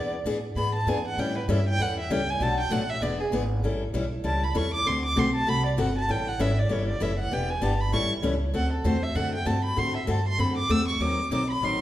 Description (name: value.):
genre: acoustic string swing (jazz manouche).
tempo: 195 BPM.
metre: 4/4.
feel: swing 58% on 8ths.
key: unclear.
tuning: A4 = 442 Hz.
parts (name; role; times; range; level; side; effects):
dark violin; melody; 0.0-11.8 s; G#4 to E6; -28 LUFS; right 1 dB; none.
picked steel-string acoustic guitar; accompaniment; 0.0-11.8 s; B2 to A4; -28 LUFS; left 2 dB; none.
upright bass; bass; 0.0-11.8 s; E1 to A2; -28 LUFS; equal; none.
room: wet recital hall reverb, RT60 1.5 s.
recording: recorded in a church or concert hall.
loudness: -23 LUFS.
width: side -13 dB against mid.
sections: 0.0-3.6 A section; 3.6-11.8 A section.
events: violin solo 0.0-11.8.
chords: 0.0 E7; 1.2 A7; 2.4 Bm7; 3.0 E7; 3.6 A7; 4.9 D7; 6.1 A7; 7.3 Em7; 7.9 A7; 8.5 D7; 11.0 D#dim7.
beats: 0.25 0.56 0.87 | 1.17 1.48 1.79 2.09 | 2.40 2.71 3.02 3.32 | 3.63 3.94 4.24 4.55 | 4.86 5.17 5.47 5.78 | 6.09 6.39 6.70 7.01 | 7.32 7.62 7.93 8.24 | 8.55 8.85 9.16 9.47 | 9.77 10.08 10.39 10.70 | 11.00 11.31 11.62.